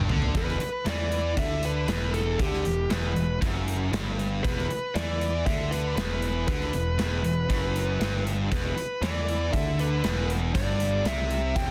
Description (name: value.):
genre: hard rock.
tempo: 118 BPM.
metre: 4/4.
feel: straight.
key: E minor.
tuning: A4 = 441 Hz.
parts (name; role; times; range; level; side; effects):
distorted electric guitar; riff; 0.0-11.7 s; E2 to E3; -36 LUFS; equal; overdrive.
heavy high-gain guitar; riff; 0.0-11.7 s; E2 to E3; -37 LUFS; equal; distortion.
fuzz picked electric bass; bass; 0.0-11.7 s; E1 to E2; -32 LUFS; equal; overdrive.
gated 80s drum kit; drums; 0.1-11.7 s; hi-hat, kick drum, snare drum, toms; -32 LUFS; equal; none.
bluesy overdriven lead guitar; melody; 0.4-11.7 s; G4 to G5; -33 LUFS; equal; distortion, slapback echo.
room: light reverb, small room ambience.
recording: dense, heavily limited modern master.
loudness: -27 LUFS.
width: mono.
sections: 0.3-11.7 A section.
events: drum fill 0.0-0.3.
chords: 0.3 Em.